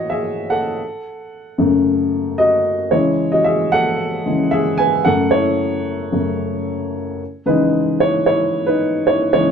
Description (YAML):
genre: pop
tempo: 112 BPM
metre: 4/4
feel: straight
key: C# minor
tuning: A4 = 441 Hz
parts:
  - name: dark upright piano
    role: solo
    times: 0.0-9.5 s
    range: F#2 to G#5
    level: -15 LUFS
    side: equal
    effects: none
room: moderate studio ambience, RT60 0.5 s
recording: band playing live in one room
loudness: -15 LUFS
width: side -7 dB against mid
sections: 0.0-7.2 A section; 7.2-9.5 B section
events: upright piano solo 0.0-7.2, 7.2-9.5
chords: 0.0 A; 0.8 F#m; 2.9 C#m; 5.1 F#m; 7.2 C#m